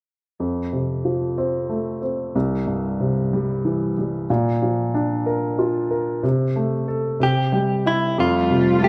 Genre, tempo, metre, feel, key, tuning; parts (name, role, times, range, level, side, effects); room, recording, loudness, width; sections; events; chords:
pop; 62 BPM (dotted quarters); 6/8; straight; F major; A4 = 442 Hz
clear baby grand piano; accompaniment; 0.4-8.9 s; C2 to G5; -23 LUFS; equal
direct-recorded clean electric guitar; melody; 7.2-8.9 s; E4 to G4; -22 LUFS; equal; spring reverb
rich studio string section; sustained chords; 8.2-8.9 s; G3 to F4; -24 LUFS; equal
wet studio reverb, RT60 0.6 s; rough home demo mix; -22 LUFS; mono
0.4-8.2 A section
grand piano fill 7.2-8.2
0.4 F; 2.3 C; 4.3 Bb; 6.2 Am/C; 7.2 C; 8.2 Fadd9